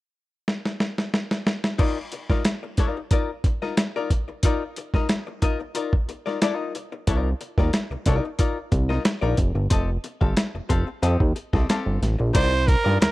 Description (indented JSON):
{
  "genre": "funk",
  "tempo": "91 BPM",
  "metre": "4/4",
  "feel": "straight",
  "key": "C dorian",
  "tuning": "A4 = 440 Hz",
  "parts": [
    { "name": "boom bap sampler-style drum kit", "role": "drums", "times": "0.5-13.1 s", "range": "crash cymbal, hi-hat, kick drum, snare drum", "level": "-22 LUFS", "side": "equal", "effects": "none" },
    { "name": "archtop guitar, miked and amplified", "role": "accompaniment", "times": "1.8-13.0 s", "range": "C4 to F5", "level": "-28 LUFS", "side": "left 5 dB", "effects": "none" },
    { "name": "fat analog bass", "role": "bass", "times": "7.1-13.1 s", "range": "F1 to G2", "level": "-22 LUFS", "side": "equal", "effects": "none" },
    { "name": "warm trumpet", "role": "melody", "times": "12.3-13.1 s", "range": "Bb4 to C5", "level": "-22 LUFS", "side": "right 4 dB", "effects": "none" }
  ],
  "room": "digital ambience",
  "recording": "dry, close 1970s-style studio recording",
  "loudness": "-21 LUFS",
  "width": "side -18 dB against mid",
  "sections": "0.0-1.8 A section; 1.8-12.4 B section",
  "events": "drum fill 0.5-1.8",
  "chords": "0.0 N.C.; 1.8 Cm11; 9.7 F9; 12.4 Cm11"
}